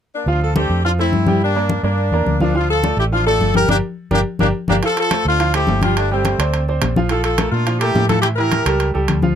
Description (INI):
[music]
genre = latin, salsa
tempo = 211 BPM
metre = 4/4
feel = straight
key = D minor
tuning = A4 = 440 Hz
[part]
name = bright horn section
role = melody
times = 0.1-8.9 s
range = A3 to Bb4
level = -19 LUFS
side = left 2 dB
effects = none
[part]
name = bright baby grand piano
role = accompaniment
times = 0.3-9.3 s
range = E3 to G5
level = -22 LUFS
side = right 3 dB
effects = none
[part]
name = vintage muted fingered electric bass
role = bass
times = 0.3-9.4 s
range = G1 to Bb2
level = -19 LUFS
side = right 1 dB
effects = none
[part]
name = congas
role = percussion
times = 0.3-9.4 s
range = none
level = -21 LUFS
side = left 4 dB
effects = none
[part]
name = timbales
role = percussion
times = 4.8-9.2 s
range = none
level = -24 LUFS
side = right 5 dB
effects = none
[sound]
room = little or no reverb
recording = close, detailed microphones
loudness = -15 LUFS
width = side -9 dB against mid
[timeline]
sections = 0.3-4.8 A section; 4.8-9.4 B section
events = band accent 3.7-4.8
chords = 0.3 Dm7; 1.4 Gm; 2.5 Dm; 3.7 Gm; 4.8 Dm7; 6.0 G9sus4; 7.1 Bbmaj7; 8.2 A7b9